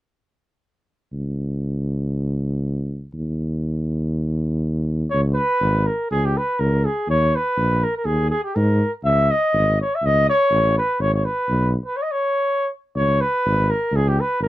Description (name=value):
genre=balkan folk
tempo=122 BPM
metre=2/4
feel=straight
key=C# dorian sharp4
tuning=A4 = 442 Hz
part: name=mellow tuba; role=bass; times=1.1-14.5 s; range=G#1 to G#2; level=-21 LUFS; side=equal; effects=none
part: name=warm flugelhorn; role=melody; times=5.1-14.5 s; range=G4 to E5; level=-19 LUFS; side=equal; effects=none
room=little or no reverb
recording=dry, close 1970s-style studio recording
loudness=-18 LUFS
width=side -15 dB against mid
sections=1.1-5.1 A section; 5.1-12.9 B section; 12.9-14.5 B section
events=none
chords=1.1 N.C.; 5.1 C#5; 7.1 D#5; 9.0 C#5; 11.0 G#m; 12.0 N.C.; 12.9 C#5